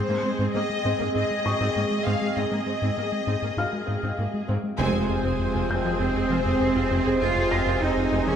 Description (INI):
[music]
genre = cinematic, hybrid orchestral and electronic film score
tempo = 99 BPM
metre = 4/4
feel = straight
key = F minor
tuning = A4 = 440 Hz
[part]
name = warm symphonic violin section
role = melody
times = 0.0-8.4 s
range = Ab4 to F5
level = -31 LUFS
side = left 4 dB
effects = none
[part]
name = rich symphonic viola section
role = accompaniment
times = 0.0-8.4 s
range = Bb3 to C5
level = -32 LUFS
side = right 2 dB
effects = none
[part]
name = hollow soft pad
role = sustained chords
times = 0.0-8.4 s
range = Ab3 to Eb5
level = -30 LUFS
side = right 1 dB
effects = chorus
[part]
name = round analog bass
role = riff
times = 0.0-8.4 s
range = F2 to Ab3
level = -29 LUFS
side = left 2 dB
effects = none
[part]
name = clear symphonic cello section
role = bass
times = 0.1-8.4 s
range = Ab2 to F4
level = -29 LUFS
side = right 3 dB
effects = none
[part]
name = felt-muted upright piano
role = texture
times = 1.5-8.4 s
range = F5 to Bb6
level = -35 LUFS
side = left 2 dB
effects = tape echo
[part]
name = rich symphonic violin section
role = second line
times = 4.8-8.4 s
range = C5 to Ab5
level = -33 LUFS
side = left 4 dB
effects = none
[part]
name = clear trombone section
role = sustained chords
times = 4.8-8.4 s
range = C3 to C4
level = -31 LUFS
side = right 4 dB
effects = none
[part]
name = dark French horn section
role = sustained chords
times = 4.8-8.4 s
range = F3 to C4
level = -34 LUFS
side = left 3 dB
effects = none
[part]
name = clear symphonic double bass section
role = bass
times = 4.8-8.3 s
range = F1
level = -34 LUFS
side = right 3 dB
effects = none
[part]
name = mellow tuba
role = bass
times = 4.8-8.2 s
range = F1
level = -35 LUFS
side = right 5 dB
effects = none
[part]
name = punchy sub bass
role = bass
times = 4.8-8.4 s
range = F1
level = -34 LUFS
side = equal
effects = none
[sound]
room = moderate scoring stage reverb, RT60 1.6 s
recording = none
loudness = -22 LUFS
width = side -8 dB against mid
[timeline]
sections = 0.0-4.8 A section; 4.8-8.4 B section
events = band accent 4.8-5.4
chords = 0.0 Ab; 4.8 Fm